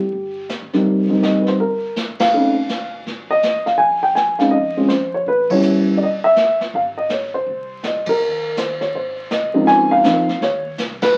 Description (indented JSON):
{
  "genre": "jazz piano trio",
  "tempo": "163 BPM",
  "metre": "4/4",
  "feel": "swing 64% on 8ths",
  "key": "Ab major",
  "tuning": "A4 = 439 Hz",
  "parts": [
    { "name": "dark upright piano", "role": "melody", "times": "0.0-11.2 s", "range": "Db2 to Ab5", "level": "-18 LUFS", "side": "equal", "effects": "none" },
    { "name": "upright bass", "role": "bass", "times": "0.0-11.2 s", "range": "E1 to F2", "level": "-42 LUFS", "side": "equal", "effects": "none" },
    { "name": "jazz brush drum kit", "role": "drums", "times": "0.1-11.2 s", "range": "brushed snare drum, hi-hat, kick drum, ride cymbal, snare drum", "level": "-29 LUFS", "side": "equal", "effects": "none" }
  ],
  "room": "wet studio reverb, RT60 0.7 s",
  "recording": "very old 78 rpm record, vinyl crackle",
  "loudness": "-18 LUFS",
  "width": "mono",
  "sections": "0.0-9.7 A section; 9.7-11.2 B section",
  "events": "band accent 2.1, 5.4, 8.0, 11.0",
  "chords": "0.1 G; 0.9 Cm7; 2.3 F7; 3.8 Bbm11; 5.3 A9; 6.7 Ab; 8.2 Eb5; 8.9 Ab; 9.7 Dbmaj13"
}